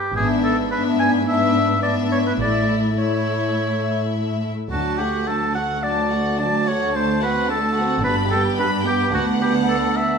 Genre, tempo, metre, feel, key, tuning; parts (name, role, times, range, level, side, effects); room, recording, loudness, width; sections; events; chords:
quick classical-period movement for symphony orchestra; 108 BPM; 4/4; rubato; D major; A4 = 440 Hz
warm oboe; second line; 0.0-10.2 s; F#4 to G#5; -22 LUFS; equal
rich chamber violin section; melody; 0.2-10.2 s; E5 to B5; -28 LUFS; left 5 dB
warm chamber violin section; second line; 0.2-10.2 s; D4 to G4; -26 LUFS; left 3 dB
warm chamber viola section; accompaniment; 0.2-10.2 s; F#3 to C4; -25 LUFS; right 1 dB
rich chamber cello section; bass; 0.2-10.2 s; D2 to A2; -25 LUFS; right 3 dB
rich chamber double bass section; bass; 0.2-9.6 s; G1 to D2; -29 LUFS; right 3 dB
wet recital hall reverb, RT60 1.4 s; -18 LUFS; side -6 dB against mid
0.0-10.2 A section
0.2 E7/G#; 2.4 A; 4.7 D; 6.9 D7; 8.0 G; 9.1 Bm/D